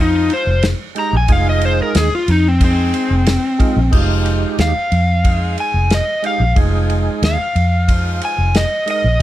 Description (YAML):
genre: straight-eighth soul blues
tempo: 91 BPM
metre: 4/4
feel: straight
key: F minor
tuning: A4 = 441 Hz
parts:
  - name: overdriven slide guitar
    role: melody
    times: 0.0-9.2 s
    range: C4 to Bb5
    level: -18 LUFS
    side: left 1 dB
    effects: none
  - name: brilliant horn section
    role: sustained chords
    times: 0.0-8.5 s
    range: F3 to Ab4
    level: -27 LUFS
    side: equal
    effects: none
  - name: vintage muted fingered electric bass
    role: bass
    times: 0.0-9.2 s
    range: F1 to F2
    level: -16 LUFS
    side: equal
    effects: none
  - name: damped 70s drum kit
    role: drums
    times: 0.3-9.0 s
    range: crash cymbal, kick drum, ride cymbal, snare drum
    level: -19 LUFS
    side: equal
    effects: none
  - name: percussive tonewheel organ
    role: accompaniment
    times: 0.9-9.2 s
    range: Ab3 to Bb4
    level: -21 LUFS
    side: right 6 dB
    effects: overdrive, chorus vibrato, slow rotary speaker
room: little or no reverb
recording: none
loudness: -13 LUFS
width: side -14 dB against mid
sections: 0.0-3.9 A section; 3.9-9.2 A section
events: electric slide guitar solo 0.0-9.2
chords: 0.0 Fm7